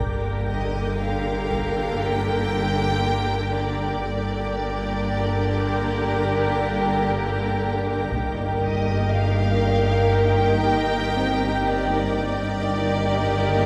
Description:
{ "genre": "cinematic, suspense film score", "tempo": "59 BPM", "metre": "4/4", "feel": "straight", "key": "G minor", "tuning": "A4 = 440 Hz", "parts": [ { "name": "rich studio violin section", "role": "second line", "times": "0.0-13.7 s", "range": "G4 to Bb4", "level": "-29 LUFS", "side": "equal", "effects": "none" }, { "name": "rich studio viola section", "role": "accompaniment", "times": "0.0-13.7 s", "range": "D3 to Bb3", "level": "-30 LUFS", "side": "equal", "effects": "none" }, { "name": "shimmering ambient pad", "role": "sustained chords", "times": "0.0-13.7 s", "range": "Eb4 to D6", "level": "-34 LUFS", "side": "equal", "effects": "chorus, built-in reverb" }, { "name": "rich studio cello section", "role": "bass", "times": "0.0-13.7 s", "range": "G2", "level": "-30 LUFS", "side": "equal", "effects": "none" }, { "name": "rich studio double bass section", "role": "bass", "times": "0.0-13.7 s", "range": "G1", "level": "-32 LUFS", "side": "equal", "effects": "none" }, { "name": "metallic inharmonic drone", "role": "drone", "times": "0.0-13.7 s", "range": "G1", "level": "-34 LUFS", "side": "equal", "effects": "chorus, built-in reverb" }, { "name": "rich studio violin section", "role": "melody", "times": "0.5-13.7 s", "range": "D5 to G5", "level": "-32 LUFS", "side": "equal", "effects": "none" }, { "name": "clear concert grand piano", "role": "texture", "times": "0.5-13.7 s", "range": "C4 to G5", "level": "-37 LUFS", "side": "equal", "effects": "none" }, { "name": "solo taiko drums", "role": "drums", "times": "1.5-2.0, 8.1-10.1 s", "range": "none", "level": "-36 LUFS", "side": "equal", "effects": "none" } ], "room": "wet church reverb, RT60 3.4 s", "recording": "recorded in a church or concert hall", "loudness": "-23 LUFS", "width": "mono", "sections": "0.0-13.7 A section", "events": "none", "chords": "0.0 Gm; 8.1 Eb/G" }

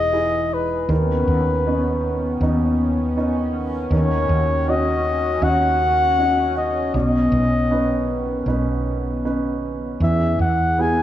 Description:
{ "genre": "acoustic folk-pop ballad", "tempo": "79 BPM", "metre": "4/4", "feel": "straight", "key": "B major", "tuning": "A4 = 440 Hz", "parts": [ { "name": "mellow flugelhorn", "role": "melody", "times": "0.0-11.0 s", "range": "B4 to G#5", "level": "-21 LUFS", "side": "left 2 dB", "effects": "none" }, { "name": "warm grand piano", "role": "accompaniment", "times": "0.0-11.0 s", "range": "B2 to B4", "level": "-23 LUFS", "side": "right 2 dB", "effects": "none" }, { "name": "chorused pulse-width pad", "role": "sustained chords", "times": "0.0-11.0 s", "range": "D#3 to G#4", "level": "-26 LUFS", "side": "left 1 dB", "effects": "none" }, { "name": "woody fretless electric bass", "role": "bass", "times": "0.0-11.0 s", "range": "E1 to E2", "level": "-23 LUFS", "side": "equal", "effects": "none" } ], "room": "wet recital hall reverb, RT60 1.6 s", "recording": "recorded in a church or concert hall", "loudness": "-17 LUFS", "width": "side -12 dB against mid", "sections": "0.0-11.0 A section", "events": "none", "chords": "0.0 Emaj7; 0.9 Badd9/D#; 3.9 D#m7; 6.9 Badd9; 10.0 E" }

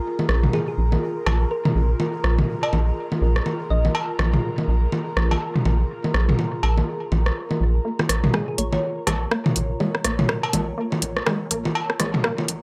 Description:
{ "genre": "minimal techno", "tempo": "123 BPM", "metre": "4/4", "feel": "swing 59% on 16ths", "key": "Bb minor", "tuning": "A4 = 439 Hz", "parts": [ { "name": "airy breathy pad", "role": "texture", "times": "0.0-12.6 s", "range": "F4 to Bb5", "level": "-34 LUFS", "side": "equal", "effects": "chorus" }, { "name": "pulsing gated texture", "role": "texture", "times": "0.0-12.6 s", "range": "Ab4 to Db5", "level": "-40 LUFS", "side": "equal", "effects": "chorus, built-in reverb" }, { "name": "organic electronic drum kit", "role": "percussion", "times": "0.2-12.5 s", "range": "bongos, cowbell, rim click, toms", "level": "-26 LUFS", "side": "equal", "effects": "none" }, { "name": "rubbery square bass", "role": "bass", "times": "0.3-12.6 s", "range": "Bb1", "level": "-24 LUFS", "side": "equal", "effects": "none" }, { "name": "thumb-piano-like synth pluck", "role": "melody", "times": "0.5-4.4, 8.3-10.5 s", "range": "Ab4 to Eb5", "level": "-33 LUFS", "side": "equal", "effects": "phaser, analog chorus, dub echo" }, { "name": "resonant blip pluck", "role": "riff", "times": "7.8-12.3 s", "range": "Ab3 to Bb3", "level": "-31 LUFS", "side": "equal", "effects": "chorus, dub echo" }, { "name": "punchy analog drum machine", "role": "drums", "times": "8.0-12.6 s", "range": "hi-hat, rim click", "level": "-26 LUFS", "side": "equal", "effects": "low-pass filter on hats, low-pass filter on snare" } ], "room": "light reverb", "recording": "high-pass filter", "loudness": "-22 LUFS", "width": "mono", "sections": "0.0-7.8 A section; 7.8-12.6 B section", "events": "build-up 7.8-12.6; filter sweep on synth pluck 7.8-12.6; filter sweep 7.8-12.6", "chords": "0.0 Bb5" }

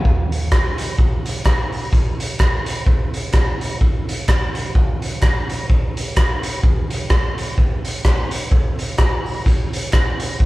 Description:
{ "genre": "ska", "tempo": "128 BPM", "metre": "4/4", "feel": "swing 57% on 8ths", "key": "none", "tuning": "none", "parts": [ { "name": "raw garage drum kit", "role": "drums", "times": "0.1-10.5 s", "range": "hi-hat, kick drum, rim click", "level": "-16 LUFS", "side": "equal", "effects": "vintage 12-bit sampler grit" }, { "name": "group handclap", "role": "percussion", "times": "0.5-10.1 s", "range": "none", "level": "-34 LUFS", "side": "right 1 dB", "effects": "none" } ], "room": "light reverb", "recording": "band playing live in one room", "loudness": "-16 LUFS", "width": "side -19 dB against mid", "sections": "0.0-10.5 A section", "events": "none", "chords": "none" }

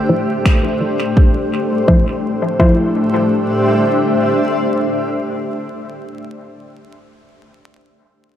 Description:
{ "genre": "ambient dub", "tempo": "84 BPM", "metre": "4/4", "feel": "swing 54% on 16ths", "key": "D minor", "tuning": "A4 = 440 Hz", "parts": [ { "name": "granular cloud pad", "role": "sustained chords", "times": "0.0-5.5 s", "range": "A3 to E5", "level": "-16 LUFS", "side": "left 1 dB", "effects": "built-in reverb" }, { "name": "filtered dub chord stab", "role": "stabs", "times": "0.0-6.2 s", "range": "F3 to C5", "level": "-18 LUFS", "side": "left 1 dB", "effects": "chorus, cassette tape, dub echo" }, { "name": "electronic finger snaps", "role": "drums", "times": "0.5-0.6 s", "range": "none", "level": "-28 LUFS", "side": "equal", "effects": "overdrive, dub echo" }, { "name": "electronic kick drum", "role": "drums", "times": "0.5-2.8 s", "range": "none", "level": "-12 LUFS", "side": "equal", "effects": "overdrive" } ], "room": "moderate spring reverb, RT60 2.3 s", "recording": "echo-heavy mix, vinyl crackle", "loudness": "-13 LUFS", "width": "side -10 dB against mid", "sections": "0.0-1.9 A section; 1.9-4.7 B section", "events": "filter sweep on synth stab 0.0-1.9", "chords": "0.0 Dm9" }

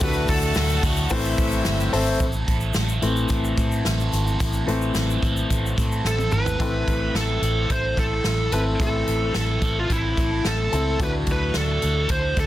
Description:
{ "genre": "piano-driven pop", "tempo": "109 BPM", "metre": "4/4", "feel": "straight", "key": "A minor", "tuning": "A4 = 440 Hz", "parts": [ { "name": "high-gain lead guitar", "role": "melody", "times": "0.0-0.8, 6.1-12.5 s", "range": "E4 to C5", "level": "-26 LUFS", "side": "equal", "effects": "distortion" }, { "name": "bright studio violin section", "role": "second line", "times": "0.0-2.2 s", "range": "E4 to F#5", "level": "-32 LUFS", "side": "right 1 dB", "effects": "none" }, { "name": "clear upright piano", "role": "accompaniment", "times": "0.0-12.5 s", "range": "A2 to C5", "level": "-27 LUFS", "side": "left 3 dB", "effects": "none" }, { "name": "biting overdriven guitar", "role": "riff", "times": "0.0-12.5 s", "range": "A2 to A4", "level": "-29 LUFS", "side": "right 3 dB", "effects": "phaser" }, { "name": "vintage muted fingered electric bass", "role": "bass", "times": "0.0-12.5 s", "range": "G1 to A2", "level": "-24 LUFS", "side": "equal", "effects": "none" }, { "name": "natural country drum kit", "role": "drums", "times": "0.0-12.5 s", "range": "hi-hat, kick drum, snare drum, toms", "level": "-26 LUFS", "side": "equal", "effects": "none" }, { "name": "egg shaker", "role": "percussion", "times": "0.0-6.6 s", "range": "none", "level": "-38 LUFS", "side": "left 6 dB", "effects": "none" } ], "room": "light reverb", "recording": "dense, heavily limited modern master", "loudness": "-20 LUFS", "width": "side -14 dB against mid", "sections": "0.0-2.2 A section; 2.2-6.6 B section; 6.6-12.5 C section", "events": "upright piano solo 2.2-6.6; drum fill 6.1-6.6", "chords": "0.0 Dadd9; 1.1 Am; 11.0 Dadd9" }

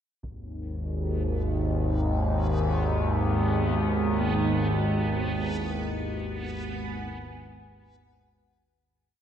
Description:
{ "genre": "dark ambient drone", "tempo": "free time", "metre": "none", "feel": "none", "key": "G# minor", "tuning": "A4 = 440 Hz", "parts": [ { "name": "deep dark ambient pad", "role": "sustained chords", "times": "3.0-8.8 s", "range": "G#3 to B5", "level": "-33 LUFS", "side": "right 5 dB", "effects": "chorus, built-in reverb" }, { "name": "analog drone", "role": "drone", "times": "0.4-8.9 s", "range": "G#1 to D#2", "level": "-26 LUFS", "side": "equal", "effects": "chorus" }, { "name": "taiko ensemble", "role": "percussion", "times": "0.2-0.4 s", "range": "none", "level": "-46 LUFS", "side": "equal", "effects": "low-pass filter on perc" }, { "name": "backwards swelling texture", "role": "texture", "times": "1.4-8.8 s", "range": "B3", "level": "-38 LUFS", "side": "right 3 dB", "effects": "built-in reverb, shimmer reverb" }, { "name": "gamelan-type bronze metallophone", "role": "arpeggios", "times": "4.2-9.2 s", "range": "A#3 to F#4", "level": "-37 LUFS", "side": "right 2 dB", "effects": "none" } ], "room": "wet echo chamber reverb, RT60 2.1 s", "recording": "echo-heavy mix, cassette tape", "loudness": "-25 LUFS", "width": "side -9 dB against mid", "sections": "0.2-8.8 A section", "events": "fade-in on ambient pad 0.2-8.8; fade-in on synth texture 0.2-8.8; fade-in on drum 0.2-8.8; fade-out 4.5-8.8", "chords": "0.2 G#m; 4.5 E/G#" }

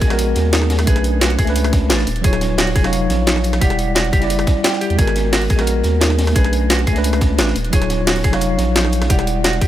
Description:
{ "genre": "liquid drum and bass", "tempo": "175 BPM", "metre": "4/4", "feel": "straight", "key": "unclear", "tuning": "A4 = 440 Hz", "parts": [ { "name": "mellow tine electric piano", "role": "accompaniment", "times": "0.0-9.7 s", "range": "F#3 to F#5", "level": "-20 LUFS", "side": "equal", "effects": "medium stereo tremolo, digital delay" }, { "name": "semi-hollow electric guitar", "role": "arpeggios", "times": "0.0-9.7 s", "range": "D4 to G5", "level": "-25 LUFS", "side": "right 3 dB", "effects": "spring reverb, digital delay" }, { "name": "saturated sub bass", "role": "bass", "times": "0.0-9.7 s", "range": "D#1 to E2", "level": "-19 LUFS", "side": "equal", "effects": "none" }, { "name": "crunchy breakbeat drum kit", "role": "drums", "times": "0.0-9.7 s", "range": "hi-hat, snare drum", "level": "-27 LUFS", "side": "equal", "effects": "high-pass filter on hats, studio reverb, high-pass filter on snare, high-pass filter on room" }, { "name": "electronic kick drum", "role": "drums", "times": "0.0-9.7 s", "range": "none", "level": "-17 LUFS", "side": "equal", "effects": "studio reverb" }, { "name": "jungle sampler-style drum kit", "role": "drums", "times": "0.0-9.7 s", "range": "hi-hat, snare drum", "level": "-21 LUFS", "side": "equal", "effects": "studio reverb" } ], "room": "little or no reverb", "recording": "none", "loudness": "-14 LUFS", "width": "side -12 dB against mid", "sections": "0.0-9.7 A section", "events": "none", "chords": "0.0 G#m9; 0.9 Bm9; 2.1 D#m9; 3.6 Em9; 5.0 G#m9; 6.4 Bm9; 7.6 D#m9; 9.1 Em9" }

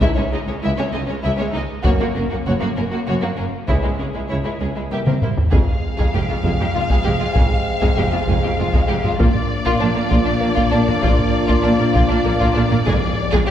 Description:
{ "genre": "cinematic, epic orchestral film score", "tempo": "98 BPM", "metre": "3/4", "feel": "straight", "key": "C# dorian, F dorian from 5.5 s", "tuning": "A4 = 438 Hz", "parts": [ { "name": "warm symphonic violin section", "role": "melody", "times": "0.0-13.5 s", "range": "E4 to F5", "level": "-25 LUFS", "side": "left 3 dB", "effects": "none" }, { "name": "rich studio violin section", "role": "second line", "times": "0.0-13.5 s", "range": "G#3 to Ab4", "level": "-25 LUFS", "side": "left 2 dB", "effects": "none" }, { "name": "rich studio viola section", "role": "accompaniment", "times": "0.0-13.4 s", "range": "G#3 to A#3", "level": "-26 LUFS", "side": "equal", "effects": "none" }, { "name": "dark French horn section", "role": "sustained chords", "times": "0.0-13.5 s", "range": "E3 to A#4", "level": "-27 LUFS", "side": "left 3 dB", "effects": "none" }, { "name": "rich studio cello section", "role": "bass", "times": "0.0-13.5 s", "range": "C2 to Bb2", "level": "-24 LUFS", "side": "right 2 dB", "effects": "none" }, { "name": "rich studio double bass section", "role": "bass", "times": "0.0-13.5 s", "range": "F1 to C#2", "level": "-25 LUFS", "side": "right 1 dB", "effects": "none" }, { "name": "taiko ensemble", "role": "drums", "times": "0.0-13.5 s", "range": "none", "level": "-20 LUFS", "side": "equal", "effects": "none" }, { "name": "clear trombone section", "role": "sustained chords", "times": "5.5-13.5 s", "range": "F3 to Bb3", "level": "-27 LUFS", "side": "right 1 dB", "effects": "none" }, { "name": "timpani", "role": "percussion", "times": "12.9-13.5 s", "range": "F2", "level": "-26 LUFS", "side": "left 3 dB", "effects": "none" } ], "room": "wet scoring stage reverb, RT60 2.0 s", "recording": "heard from further back in the room", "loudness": "-16 LUFS", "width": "side -10 dB against mid", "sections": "0.0-5.5 A section; 5.5-13.5 B section", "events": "drum fill 5.1-5.5", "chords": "0.0 C#5; 1.9 F#; 3.7 C#m; 4.9 C7; 5.5 Fmadd9; 9.2 Bb; 12.9 Fmadd9" }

